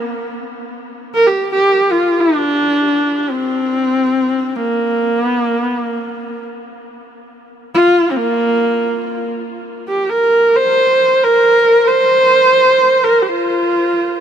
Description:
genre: mongolian traditional, Mongolian folk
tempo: free time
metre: none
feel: none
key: Bb gong mode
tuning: A4 = 439 Hz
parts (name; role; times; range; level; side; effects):
- clear horsehead fiddle; solo; 0.0-14.2 s; Bb3 to C5; -12 LUFS; equal; none
room: moderate huge ambient reverb, RT60 7.1 s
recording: none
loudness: -12 LUFS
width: side -8 dB against mid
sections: 0.7-9.4 A section; 9.4-14.2 A section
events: none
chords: none

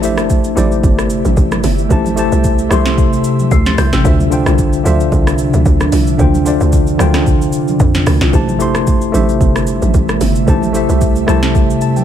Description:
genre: amapiano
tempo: 112 BPM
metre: 4/4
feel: swing 55% on 16ths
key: unclear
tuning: A4 = 440 Hz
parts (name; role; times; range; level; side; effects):
- mellow tine electric piano; accompaniment; 0.0-12.0 s; D3 to C7; -16 LUFS; left 2 dB; medium stereo tremolo
- ethereal airy pad; sustained chords; 0.0-12.0 s; C3 to E5; -19 LUFS; equal; ensemble chorus, built-in reverb, sidechain pumping
- hollow log drum bass; bass; 0.0-11.8 s; G1 to F2; -16 LUFS; equal; none
- smooth R&B drum kit; drums; 0.0-12.0 s; hi-hat, kick drum, rim click, shaker, snare drum; -15 LUFS; equal; overdrive
- congas; percussion; 0.6-12.0 s; none; -24 LUFS; right 4 dB; none
room: little or no reverb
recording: none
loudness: -10 LUFS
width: side -10 dB against mid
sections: 0.0-12.0 A section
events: tine electric piano fill 11.5-12.0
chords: 0.0 Am7; 4.0 Dm9; 8.3 Am7

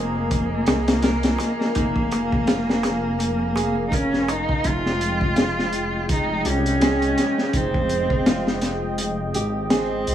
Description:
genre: trip hop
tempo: 83 BPM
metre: 4/4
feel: swing 57% on 16ths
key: F minor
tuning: A4 = 440 Hz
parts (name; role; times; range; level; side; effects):
- dark cello; melody; 0.0-10.1 s; Bb3 to F4; -23 LUFS; equal; vintage 12-bit sampler grit, tape echo
- dark analog pad; sustained chords; 0.0-10.1 s; Ab3 to Ab5; -28 LUFS; equal; chorus
- dark detuned saw bass; bass; 0.0-10.1 s; F1 to C2; -27 LUFS; equal; none
- darbuka; percussion; 0.2-4.6 s; none; -35 LUFS; right 4 dB; none
- crunchy breakbeat drum kit; drums; 0.3-10.1 s; hi-hat, kick drum, snare drum; -23 LUFS; equal; none
- nylon-string guitar; arpeggios; 0.7-10.1 s; Eb4 to Bb4; -31 LUFS; right 4 dB; tape echo
room: light reverb, small room ambience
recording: none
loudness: -19 LUFS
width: side -10 dB against mid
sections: 0.0-4.6 A section; 4.6-10.1 B section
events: none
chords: 0.0 Ebsus24/F; 4.6 Fm9

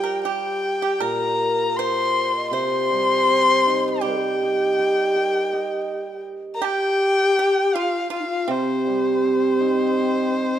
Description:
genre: chinese traditional, Chinese chamber ensemble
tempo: 81 BPM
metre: 4/4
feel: rubato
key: C yu mode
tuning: A4 = 439 Hz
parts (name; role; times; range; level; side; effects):
- warm erhu; melody; 0.0-10.6 s; C5 to C6; -23 LUFS; left 2 dB; none
- pipa; second line; 0.0-10.6 s; C4 to C5; -30 LUFS; right 9 dB; none
- hammered dulcimer; accompaniment; 0.0-10.6 s; Bb2 to Eb5; -24 LUFS; right 4 dB; none
- hollow low xiao; second line; 0.3-10.6 s; C4 to Eb5; -23 LUFS; left 3 dB; none
room: moderate scoring stage reverb, RT60 1.5 s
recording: none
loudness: -18 LUFS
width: side -10 dB against mid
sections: 0.0-10.6 A section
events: none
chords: none

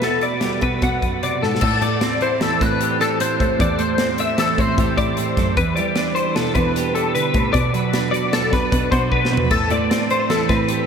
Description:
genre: math rock and midwest emo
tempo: 152 BPM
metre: 5/4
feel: straight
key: unclear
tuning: A4 = 440 Hz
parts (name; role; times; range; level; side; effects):
- twelve-string electric guitar; accompaniment; 0.0-10.9 s; A2 to B4; -23 LUFS; right 9 dB; none
- twelve-string electric guitar; arpeggios; 0.0-10.9 s; A4 to F#5; -20 LUFS; left 4 dB; ensemble chorus, diffuse ambient delay
- warm cello; bass; 0.0-10.9 s; E2 to E3; -24 LUFS; left 1 dB; none
- modern studio drum kit; drums; 0.0-10.8 s; crash cymbal, hi-hat, kick drum, snare drum, splash cymbal, toms; -24 LUFS; equal; none
room: wet huge ambient reverb, RT60 7.6 s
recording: dreamy mix soaked in reverb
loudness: -16 LUFS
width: side -6 dB against mid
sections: 0.0-1.6 A section; 1.6-10.9 B section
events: drum fill 1.4, 9.1-9.5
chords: 0.0 Gmaj7/B; 1.6 Am7; 5.6 Em7; 7.5 Bm; 9.5 Am7

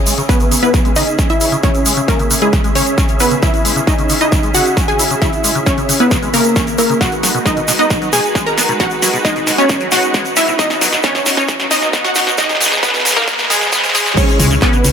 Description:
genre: uplifting trance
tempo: 134 BPM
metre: 4/4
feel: straight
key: C# dorian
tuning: A4 = 439 Hz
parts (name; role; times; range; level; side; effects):
- wide unison pluck; melody; 0.0-14.9 s; G#3 to A#5; -16 LUFS; equal; sidechain pumping, ping-pong delay
- filtered supersaw swell; sustained chords; 0.0-14.9 s; B2 to E5; -22 LUFS; right 1 dB; sidechain pumping
- liquid acid bass; arpeggios; 0.1-14.9 s; B2 to E4; -22 LUFS; left 3 dB; chorus, sidechain pumping, ping-pong delay
- punchy analog drum machine; drums; 0.1-14.9 s; crash cymbal, handclaps, hi-hat, snare drum, toms; -18 LUFS; left 1 dB; high-pass filter on hats, high-pass filter on toms, high-pass filter on snare, high-pass filter on cymbals, high-pass filter on room
- egg shaker; percussion; 0.1-14.9 s; none; -21 LUFS; right 5 dB; none
- electronic kick drum; drums; 0.3-14.7 s; none; -17 LUFS; equal; none
- riser; sound effects; 10.0-14.2 s; none; -29 LUFS; right 1 dB; none
- solid FM bass; bass; 14.4-14.9 s; C#2; -14 LUFS; equal; sidechain pumping
room: moderate huge ambient reverb, RT60 4.2 s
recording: high-pass filter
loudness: -11 LUFS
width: side -7 dB against mid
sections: 0.0-14.2 A section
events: build-up 0.0-14.2; drum fill 0.0-14.2; filter sweep on acid bass 0.0-14.2; filter sweep 0.0-14.2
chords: 0.0 C#m; 7.0 G#m7; 10.6 B; 14.2 C#m

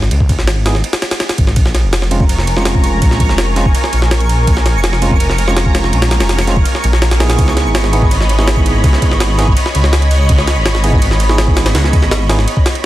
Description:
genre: drum and bass, jungle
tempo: 165 BPM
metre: 4/4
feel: straight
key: unclear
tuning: A4 = 440 Hz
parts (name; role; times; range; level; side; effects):
- detuned saw bass; bass; 0.0-12.5 s; F1 to Db2; -14 LUFS; equal; none
- jungle sampler-style drum kit; drums; 0.0-12.8 s; kick drum, ride cymbal, snare drum; -14 LUFS; equal; none
- bright tine electric piano; stabs; 0.7-12.4 s; Ab3 to Ab4; -20 LUFS; right 3 dB; vintage 12-bit sampler grit, dub echo
- lush unison pad; sustained chords; 2.1-12.9 s; Bb4 to Cb6; -20 LUFS; equal; chorus, phaser
- twinkling granular texture; texture; 2.2-12.9 s; Db6; -25 LUFS; right 1 dB; built-in reverb
room: light reverb, digital ambience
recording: dense, heavily limited modern master, vinyl crackle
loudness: -10 LUFS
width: side -15 dB against mid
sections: 0.0-12.9 A section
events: none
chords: 0.0 Db5; 1.6 Bbm9; 7.4 Dbm9

